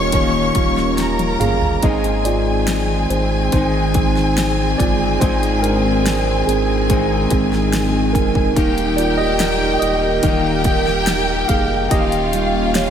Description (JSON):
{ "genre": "pop ballad", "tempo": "71 BPM", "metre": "4/4", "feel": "straight", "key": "Eb major", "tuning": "A4 = 440 Hz", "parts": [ { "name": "rich studio violin section", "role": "second line", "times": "0.0-12.9 s", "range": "F4 to Db6", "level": "-22 LUFS", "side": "equal", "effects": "digital delay" }, { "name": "mellow tine electric piano", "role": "accompaniment", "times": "0.0-12.9 s", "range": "G3 to F5", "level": "-20 LUFS", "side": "right 4 dB", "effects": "phaser" }, { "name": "airy breathy pad", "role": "sustained chords", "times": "0.0-12.9 s", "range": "Eb3 to G5", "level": "-23 LUFS", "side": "equal", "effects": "chorus" }, { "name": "fingerpicked steel-string acoustic guitar", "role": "arpeggios", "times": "0.0-12.9 s", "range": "Ab2 to Ab4", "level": "-24 LUFS", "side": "left 5 dB", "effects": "slapback echo" }, { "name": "warm sub bass", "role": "bass", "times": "0.0-12.9 s", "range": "Eb1 to Ab1", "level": "-23 LUFS", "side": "equal", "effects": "none" }, { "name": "pop drum kit", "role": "drums", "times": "0.1-12.9 s", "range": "hi-hat, kick drum, snare drum, toms", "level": "-21 LUFS", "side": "equal", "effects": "none" } ], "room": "moderate concert hall reverb, RT60 2.4 s", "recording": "big arena sound", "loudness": "-14 LUFS", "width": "side -8 dB against mid", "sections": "0.0-12.9 A section", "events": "tine electric piano solo 0.0-12.9; drum fill 1.0-1.8", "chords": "0.0 Eb7; 1.8 Ab; 8.6 Eb; 11.9 Eb7" }